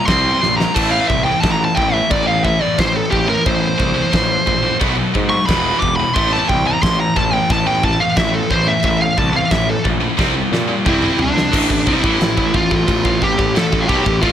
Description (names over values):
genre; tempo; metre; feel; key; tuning
heavy metal; 89 BPM; 4/4; straight; A minor; A4 = 440 Hz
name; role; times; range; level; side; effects
high-gain lead guitar; melody; 0.0-14.3 s; D4 to D6; -18 LUFS; equal; distortion
scooped high-gain guitar; riff; 0.0-14.3 s; E2 to C4; -19 LUFS; equal; distortion
fuzz picked electric bass; bass; 0.1-14.3 s; E1 to Bb2; -21 LUFS; equal; overdrive
big rock drum kit; drums; 0.1-14.3 s; crash cymbal, kick drum, snare drum, toms; -20 LUFS; equal; none
room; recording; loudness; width
studio ambience; none; -13 LUFS; side -10 dB against mid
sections
0.0-11.5 A section; 11.5-14.3 B section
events
lead electric guitar solo 0.0-11.5; drum fill 0.4-0.8, 10.2-11.5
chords
0.0 C5; 0.8 Am; 4.8 B5; 5.5 E5; 6.2 A5; 10.2 C5; 11.5 A5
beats
0.08 | 0.76 1.43 2.11 2.78 | 3.46 4.13 4.81 5.48 | 6.15 6.83 7.50 8.17 | 8.85 9.52 10.19 10.87 | 11.54 12.21 12.88 13.55 | 14.23